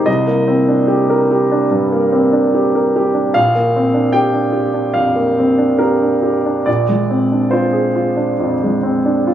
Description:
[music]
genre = classical, impressionist solo piano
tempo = 68-76 BPM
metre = 4/4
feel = rubato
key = unclear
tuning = A4 = 440 Hz
[part]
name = clear concert grand piano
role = solo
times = 0.0-9.3 s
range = Bb1 to G5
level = -12 LUFS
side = right 1 dB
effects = none
[sound]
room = moderate recital hall reverb, RT60 1.4 s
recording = recorded on a phone in the room, club reverb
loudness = -12 LUFS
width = side -10 dB against mid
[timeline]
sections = 0.0-9.3 A section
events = none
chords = 0.1 Cm9; 3.4 Bb69; 6.7 Bb9

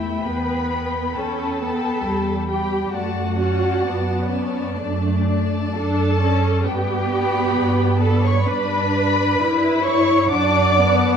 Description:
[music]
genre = classical, slow romantic movement for string orchestra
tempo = 66 BPM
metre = 4/4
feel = rubato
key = D major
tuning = A4 = 439 Hz
[part]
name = muted studio violin section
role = melody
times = 0.0-11.2 s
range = C#5 to D6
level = -26 LUFS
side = left 5 dB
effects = none
[part]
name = muted studio violin section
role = second line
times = 0.0-11.2 s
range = D5 to B5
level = -28 LUFS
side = left 2 dB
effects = none
[part]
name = muted studio viola section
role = accompaniment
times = 0.0-11.2 s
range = G3 to E4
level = -23 LUFS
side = left 2 dB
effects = none
[part]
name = muted studio cello section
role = bass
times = 0.0-11.2 s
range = C#4 to D5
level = -24 LUFS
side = right 3 dB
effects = none
[part]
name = muted studio double bass section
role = bass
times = 0.0-11.1 s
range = E2 to G2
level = -23 LUFS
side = right 2 dB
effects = none
[sound]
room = wet recital hall reverb, RT60 1.6 s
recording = dark, warm production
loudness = -17 LUFS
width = side -7 dB against mid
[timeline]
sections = 0.0-11.2 A section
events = none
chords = 0.0 Em; 2.9 D/F#; 6.7 G; 10.3 D/F#

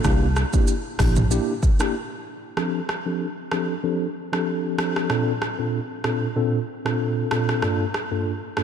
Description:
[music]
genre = afrobeats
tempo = 95 BPM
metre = 4/4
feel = swing 55% on 16ths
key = F major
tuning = A4 = 440 Hz
[part]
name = mellow tine electric piano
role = accompaniment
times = 0.0-8.6 s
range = G2 to A4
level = -24 LUFS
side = equal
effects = medium stereo tremolo, low-pass filter
[part]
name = fingered electric bass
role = bass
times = 0.0-1.4 s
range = Bb1 to C2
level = -21 LUFS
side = equal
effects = none
[part]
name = deep house drum kit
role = drums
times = 0.0-8.6 s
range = hi-hat, kick drum, rim click, shaker, toms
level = -25 LUFS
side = equal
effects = none
[sound]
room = moderate lush hall reverb, RT60 2.9 s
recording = dreamy mix soaked in reverb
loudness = -21 LUFS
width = side -8 dB against mid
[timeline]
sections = 0.0-2.6 A section; 2.6-8.6 B section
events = break 1.9-2.6; filter sweep on tine electric piano 2.6-8.6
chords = 0.0 C7; 2.6 F6; 5.1 Bbmaj7; 7.6 Gm7

